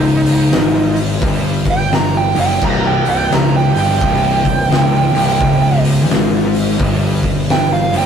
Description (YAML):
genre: stoner and doom metal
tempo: 86 BPM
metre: 4/4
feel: swing 63% on 8ths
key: C minor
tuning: A4 = 440 Hz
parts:
  - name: fuzz lead guitar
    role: melody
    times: 0.0-8.1 s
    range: Eb4 to Bb5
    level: -16 LUFS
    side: right 4 dB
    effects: wah, distortion
  - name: fuzz guitar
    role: riff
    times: 0.0-8.1 s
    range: C2 to Ab2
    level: -16 LUFS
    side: left 3 dB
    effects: distortion
  - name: thick fuzz guitar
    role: riff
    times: 0.0-8.1 s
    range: C2 to Ab2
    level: -26 LUFS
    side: right 6 dB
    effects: distortion
  - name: fuzz picked electric bass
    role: bass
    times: 0.0-8.1 s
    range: C1 to Ab1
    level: -20 LUFS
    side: equal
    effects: overdrive, tube saturation
  - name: oversized low-tuned drum kit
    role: drums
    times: 0.3-8.0 s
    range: crash cymbal, hi-hat, kick drum, snare drum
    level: -18 LUFS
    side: equal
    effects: none
room: moderate stone room reverb, RT60 1.2 s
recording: rough rehearsal-room recording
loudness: -12 LUFS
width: side -7 dB against mid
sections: 0.0-8.1 A section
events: lead electric guitar solo 0.0-8.1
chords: 0.0 C5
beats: 0.52 1.22 1.92 | 2.62 3.31 4.01 4.71 | 5.40 6.10 6.80 7.49